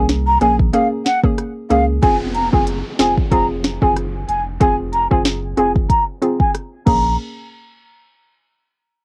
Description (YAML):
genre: dancehall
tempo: 93 BPM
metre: 4/4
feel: swing 56% on 16ths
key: unclear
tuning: A4 = 440 Hz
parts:
  - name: mellow hollow jazz flute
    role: melody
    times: 0.0-7.2 s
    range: F5 to Bb5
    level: -19 LUFS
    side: equal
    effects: low-pass filter, cassette tape
  - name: hollow square pluck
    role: accompaniment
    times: 0.0-7.1 s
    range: Bb3 to Ab4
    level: -23 LUFS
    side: equal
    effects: chorus, low-pass filter, cassette tape
  - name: warm sub bass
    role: bass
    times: 0.0-7.2 s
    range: F1 to Db2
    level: -26 LUFS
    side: equal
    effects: none
  - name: afro-pop drum kit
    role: drums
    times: 0.1-7.0 s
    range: crash cymbal, hi-hat, kick drum, rim click, snare drum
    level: -20 LUFS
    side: equal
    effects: cassette tape
  - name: downlifter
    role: sound effects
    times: 2.0-7.2 s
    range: none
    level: -34 LUFS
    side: equal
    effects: none
room: light reverb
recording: home recording on cassette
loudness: -17 LUFS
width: mono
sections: 0.0-2.0 A section; 2.0-7.2 B section; 7.2-9.0 C section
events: filter sweep 2.0-7.2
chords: 0.0 Bbm7; 2.0 Fm; 6.9 Bbm7; 7.2 N.C.